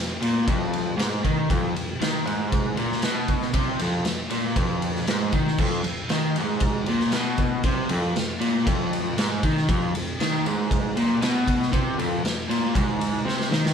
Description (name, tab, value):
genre	garage rock duo or trio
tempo	117 BPM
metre	4/4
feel	straight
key	F minor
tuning	A4 = 440 Hz
part	crunchy overdriven guitar	riff	0.0-13.7 s	F2 to Eb3	-24 LUFS	equal	none
part	raw garage drum kit	drums	0.2-13.7 s	crash cymbal, kick drum, ride cymbal, snare drum	-26 LUFS	equal	none
room	moderate stone room reverb, RT60 1.1 s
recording	band playing live in one room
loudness	-21 LUFS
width	side -7 dB against mid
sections	0.0-13.7 A section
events	drum fill 13.3-13.7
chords	none